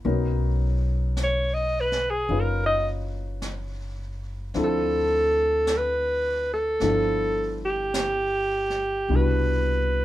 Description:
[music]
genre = jazz ballad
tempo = 53 BPM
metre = 4/4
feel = swing 69% on 8ths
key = unclear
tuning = A4 = 442 Hz
[part]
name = warm grand piano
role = accompaniment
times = 0.0-10.0 s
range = B2 to B4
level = -30 LUFS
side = left 3 dB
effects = none
[part]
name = upright bass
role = bass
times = 0.0-10.0 s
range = F#1 to D2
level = -27 LUFS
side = equal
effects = none
[part]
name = jazz brush drum kit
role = drums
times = 0.0-10.0 s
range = brushed snare drum, hi-hat, snare drum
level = -36 LUFS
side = right 1 dB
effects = none
[part]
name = breathy alto saxophone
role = melody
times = 1.2-10.0 s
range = G4 to D#5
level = -23 LUFS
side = right 1 dB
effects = none
[sound]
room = light reverb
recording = minimal, uncompressed stereo recording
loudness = -22 LUFS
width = side -14 dB against mid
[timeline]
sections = 0.0-10.0 A section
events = alto saxophone solo 0.0-10.0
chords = 0.0 Bmaj9; 4.5 Dm9; 6.8 G13; 9.1 Cmaj9#11

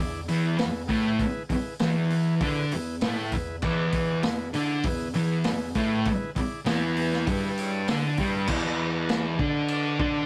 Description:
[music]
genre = garage rock duo or trio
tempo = 99 BPM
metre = 4/4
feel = straight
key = E mixolydian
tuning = A4 = 440 Hz
[part]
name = combo organ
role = sustained chords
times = 0.0-8.4 s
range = E4 to D5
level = -39 LUFS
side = equal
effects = none
[part]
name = thick fuzz guitar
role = riff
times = 0.0-10.3 s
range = E2 to D4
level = -28 LUFS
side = equal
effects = distortion
[part]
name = vintage drum kit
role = drums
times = 0.3-10.1 s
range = crash cymbal, hi-hat, kick drum, snare drum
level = -33 LUFS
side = equal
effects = none
[sound]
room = light reverb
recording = rough rehearsal-room recording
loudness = -26 LUFS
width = mono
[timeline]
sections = 0.0-8.5 A section; 8.5-10.3 B section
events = none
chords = 0.0 E; 8.5 N.C.

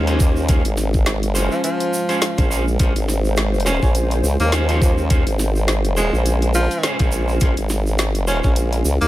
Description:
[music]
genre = glitch hop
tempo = 104 BPM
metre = 4/4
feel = swing 57% on 16ths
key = Bb minor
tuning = A4 = 440 Hz
[part]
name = dark analog pad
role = sustained chords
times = 0.0-9.1 s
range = Ab3 to C5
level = -29 LUFS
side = equal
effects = chorus, sidechain pumping
[part]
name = clean electric guitar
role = stabs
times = 0.0-8.8 s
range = Db4 to C5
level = -26 LUFS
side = right 1 dB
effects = sidechain pumping, digital delay
[part]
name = formant-sweep wobble bass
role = bass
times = 0.0-9.1 s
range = Ab1 to Eb2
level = -19 LUFS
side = equal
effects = chorus
[part]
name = drum and bass drum kit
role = drums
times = 0.1-9.1 s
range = hi-hat, snare drum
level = -24 LUFS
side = equal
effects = overdrive
[part]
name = tube shaker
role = percussion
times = 0.1-9.1 s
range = none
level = -31 LUFS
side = right 4 dB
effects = none
[part]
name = electronic kick drum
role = drums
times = 0.2-8.5 s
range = none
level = -17 LUFS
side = equal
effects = overdrive
[part]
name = breathy tenor saxophone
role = melody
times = 1.5-9.1 s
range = F3 to Db4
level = -24 LUFS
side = equal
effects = digital delay
[sound]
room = digital ambience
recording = none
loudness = -16 LUFS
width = side -15 dB against mid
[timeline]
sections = 0.0-9.1 A section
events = none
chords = 0.0 Bbm9

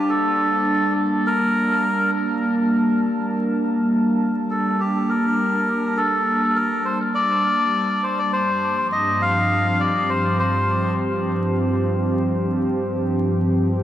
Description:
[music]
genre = ambient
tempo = 102 BPM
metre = 4/4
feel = straight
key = G minor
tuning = A4 = 440 Hz
[part]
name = melodica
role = melody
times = 0.0-10.9 s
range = G4 to F5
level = -22 LUFS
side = left 1 dB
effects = dub echo
[part]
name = warbly tape-like pad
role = sustained chords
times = 0.0-13.8 s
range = G2 to A5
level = -20 LUFS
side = equal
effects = chorus, built-in reverb
[sound]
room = wet echo chamber reverb, RT60 1.7 s, small room ambience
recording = vinyl crackle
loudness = -18 LUFS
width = side -11 dB against mid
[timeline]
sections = 0.0-13.8 A section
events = none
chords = 0.0 Gmadd9; 8.3 F/G

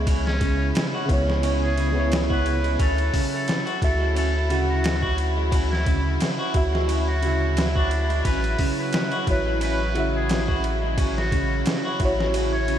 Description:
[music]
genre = trip hop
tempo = 88 BPM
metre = 4/4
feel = swing 55% on 16ths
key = unclear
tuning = A4 = 440 Hz
[part]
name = overdriven reed electric piano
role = accompaniment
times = 0.0-12.8 s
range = C#3 to F#5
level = -28 LUFS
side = right 1 dB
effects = medium tremolo, harmonic tremolo, tape echo
[part]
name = warm studio string section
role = sustained chords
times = 0.0-12.8 s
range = C#3 to E4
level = -30 LUFS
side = equal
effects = vintage 12-bit sampler grit
[part]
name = clean electric guitar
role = arpeggios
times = 0.0-12.8 s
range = C#3 to F#4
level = -29 LUFS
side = right 1 dB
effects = tape echo
[part]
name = soft dub sub bass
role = bass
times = 0.0-12.8 s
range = A1 to D2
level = -24 LUFS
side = equal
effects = none
[part]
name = trip hop sampler-style drum kit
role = drums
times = 0.1-12.8 s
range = hi-hat, kick drum, ride cymbal, snare drum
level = -26 LUFS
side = equal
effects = small room ambience
[part]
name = trumpet with metal mute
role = melody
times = 0.3-12.8 s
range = C#4 to C#5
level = -30 LUFS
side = equal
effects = tape echo
[sound]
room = moderate huge ambient reverb, RT60 4.2 s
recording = dreamy mix soaked in reverb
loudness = -20 LUFS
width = side -10 dB against mid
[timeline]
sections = 0.0-12.8 A section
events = none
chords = 0.0 C#m7; 2.8 Dadd9; 8.2 A6

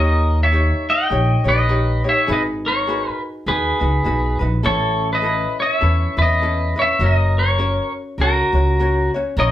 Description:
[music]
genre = Hawaiian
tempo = 102 BPM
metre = 4/4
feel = swing 59% on 8ths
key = unclear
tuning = A4 = 440 Hz
[part]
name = pedal steel guitar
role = melody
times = 0.0-9.5 s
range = F#4 to G5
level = -18 LUFS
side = left 1 dB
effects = none
[part]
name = ukulele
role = accompaniment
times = 0.0-9.5 s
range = C#4 to C#5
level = -25 LUFS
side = left 1 dB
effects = none
[part]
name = upright bass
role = bass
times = 0.0-9.5 s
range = F#1 to E2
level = -19 LUFS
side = equal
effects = none
[sound]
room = moderate studio reverb, RT60 0.6 s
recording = band playing live in one room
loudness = -16 LUFS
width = side -12 dB against mid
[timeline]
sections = 0.0-9.5 A section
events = none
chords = 0.0 D#7; 2.3 G#m7; 4.6 Aadd9; 7.0 F#

